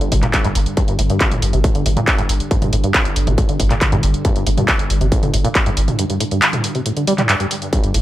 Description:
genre	driving peak-time techno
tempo	138 BPM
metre	4/4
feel	straight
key	unclear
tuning	A4 = 440 Hz
part	acid bass, saw	riff	0.0-8.0 s	G2 to G3	-21 LUFS	equal	wide subtle chorus, sidechain pumping, tape echo
part	saturated sub bass	bass	0.0-8.0 s	G1	-19 LUFS	equal	overdrive, sidechain pumping, low-pass filter
part	deep dark ambient pad	drone	0.0-8.0 s	G2 to D3	-26 LUFS	equal	chorus, built-in reverb, sidechain pumping
part	techno drum kit	drums	0.0-8.0 s	handclaps, hi-hat, toms	-19 LUFS	equal	sidechain pumping on hats, sidechain pumping on toms
part	electronic kick drum	drums	0.1-7.8 s	none	-18 LUFS	equal	distortion
room	light reverb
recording	echo-heavy mix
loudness	-14 LUFS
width	side -14 dB against mid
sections	0.0-8.0 A section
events	filter sweep on acid bass 0.0-8.0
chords	0.0 G5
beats	0.34 | 0.77 1.21 1.64 2.08 | 2.51 2.94 3.38 3.81 | 4.25 4.68 5.12 5.55 | 5.99 6.42 6.86 7.29 | 7.73

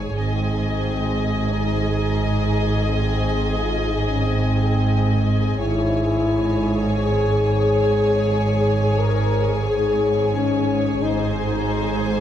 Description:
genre	cinematic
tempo	89 BPM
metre	4/4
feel	straight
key	Ab major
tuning	A4 = 442 Hz
part	warm symphonic violin section	melody	0.0-12.2 s	Ab5	-33 LUFS	left 3 dB	none
part	rich symphonic violin section	second line	0.0-12.2 s	C5 to Eb5	-28 LUFS	left 2 dB	none
part	warm symphonic viola section	accompaniment	0.0-12.2 s	Ab4	-30 LUFS	right 1 dB	none
part	dark symphonic double bass section	bass	0.0-12.2 s	Ab1	-24 LUFS	right 2 dB	none
part	rich symphonic cello section	bass	0.0-12.2 s	Ab2	-24 LUFS	right 2 dB	none
part	mellow French horn section	sustained chords	0.2-12.2 s	C4 to Bb4	-23 LUFS	left 4 dB	none
room	moderate scoring stage reverb, RT60 1.9 s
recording	dark, warm production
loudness	-18 LUFS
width	side -10 dB against mid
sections	0.0-12.2 A section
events	none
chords	0.2 Ab; 5.6 Dbm/Ab; 11.0 Ab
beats	| 0.18 0.85 1.53 2.21 | 2.88 3.56 4.24 4.92 | 5.59 6.27 6.95 7.63 | 8.30 8.98 9.66 10.34 | 11.01 11.69

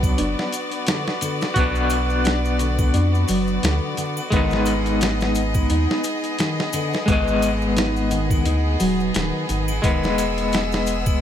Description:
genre	trip hop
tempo	87 BPM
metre	4/4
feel	swing 56% on 16ths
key	unclear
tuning	A4 = 443 Hz
part	electric guitar at the edge of break-up	accompaniment	0.0-11.2 s	F#3 to Eb5	-23 LUFS	left 2 dB	tremolo, tape echo
part	clear chamber violin section	sustained chords	0.0-11.2 s	B3 to E6	-27 LUFS	left 1 dB	none
part	soft dub sub bass	bass	0.0-11.2 s	Eb1 to F2	-23 LUFS	equal	none
part	boom bap sampler-style drum kit	drums	0.0-11.2 s	hi-hat, kick drum, snare drum	-23 LUFS	equal	small room ambience
part	maracas and triangle	percussion	0.0-11.2 s	none	-36 LUFS	left 3 dB	none
part	nylon-string guitar	arpeggios	0.2-10.1 s	D3 to Eb4	-26 LUFS	equal	ping-pong delay
room	light reverb, studio reverb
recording	none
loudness	-18 LUFS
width	side -10 dB against mid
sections	0.0-11.2 A section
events	none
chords	0.0 Bm; 4.3 Abm; 9.8 E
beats	0.18 0.87 | 1.56 2.25 2.94 3.63 | 4.32 5.01 5.70 6.39 | 7.08 7.77 8.46 9.15 | 9.84 10.53

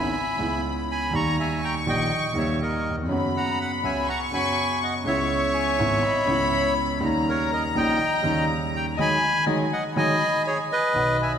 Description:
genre	tango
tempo	122 BPM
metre	4/4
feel	rubato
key	G# minor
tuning	A4 = 441 Hz
part	bandoneon	melody	0.0-11.3 s	G#4 to C#6	-25 LUFS	right 1 dB	none
part	warm studio violin section	second line	0.0-11.4 s	G#5 to C#6	-28 LUFS	left 4 dB	none
part	warm concert grand piano	accompaniment	0.0-11.4 s	G#1 to G4	-25 LUFS	right 1 dB	none
part	warm clarinet	second line	5.5-10.1 s	C#5 to G#5	-33 LUFS	left 7 dB	none
room	wet concert hall reverb, RT60 2.2 s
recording	recorded in a church or concert hall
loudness	-21 LUFS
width	side -8 dB against mid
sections	0.0-10.9 A section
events	band accent 9.0-10.9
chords	0.0 C#m7; 1.1 D#; 3.1 F#sus4; 5.1 C#m7; 7.0 D#7; 9.0 G#m7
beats	0.15 0.65 | 1.13 1.62 2.12 2.61 | 3.10 3.59 4.08 4.58 | 5.07 5.55 6.04 6.53 | 7.02 7.51 8.00 8.48 | 8.97 9.47 9.96 10.45 | 10.94

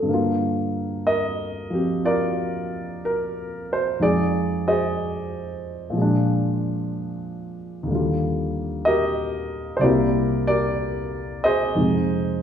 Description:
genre	solo jazz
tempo	62 BPM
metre	4/4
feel	swing 68% on 8ths, rubato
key	unclear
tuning	A4 = 440 Hz
part	dark concert grand piano	solo	0.0-12.4 s	C2 to Eb5	-21 LUFS	equal	none
room	wet large studio reverb, RT60 1.3 s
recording	band playing live in one room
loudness	-21 LUFS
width	side -8 dB against mid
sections	0.0-12.4 A section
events	none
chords	0.1 Gm7; 4.0 Fm7; 6.0 Bb7; 7.9 Ebmaj9; 9.8 C7; 11.8 Fm7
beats	| 0.08 1.07 2.05 3.03 | 4.01 4.98 5.95 6.93 | 7.90 8.86 9.82 10.79 | 11.76

